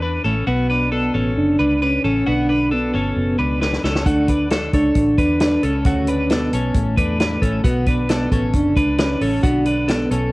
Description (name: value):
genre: jangly indie pop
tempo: 134 BPM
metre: 4/4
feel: straight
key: unclear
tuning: A4 = 441 Hz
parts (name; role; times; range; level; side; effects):
- twelve-string electric guitar; arpeggios; 0.0-10.3 s; A3 to C#5; -23 LUFS; left 2 dB; cassette tape
- vintage muted fingered electric bass; bass; 0.0-10.3 s; F#1 to E2; -23 LUFS; equal; none
- soft octave-layered synth lead; melody; 0.2-10.3 s; A3 to D4; -19 LUFS; right 1 dB; chorus, tremolo
- vintage drum kit; drums; 3.6-10.2 s; hi-hat, kick drum, snare drum; -21 LUFS; equal; none
room: light reverb, small room ambience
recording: home recording on cassette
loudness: -16 LUFS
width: side -21 dB against mid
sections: 0.0-10.3 A section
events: drum fill 3.6-4.1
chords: 0.5 Bm; 4.1 Dadd9; 7.6 Bm